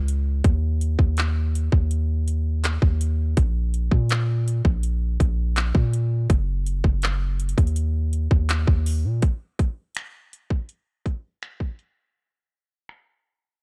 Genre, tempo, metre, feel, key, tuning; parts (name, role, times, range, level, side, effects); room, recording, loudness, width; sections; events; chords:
contemporary R&B; 82 BPM; 4/4; straight; Eb minor; A4 = 440 Hz
long sustained 808-style bass; bass; 0.0-9.2 s; Gb1 to Bb2; -24 LUFS; equal
trap drum kit; drums; 0.1-13.1 s; finger snaps, handclaps, hi-hat, kick drum; -24 LUFS; equal; overdrive
little or no reverb; dry, gritty hardware recording, low-pass filter; -23 LUFS; mono
0.0-9.2 A section; 9.2-13.6 B section
fade-out 9.2-13.6; filter sweep 9.2-13.6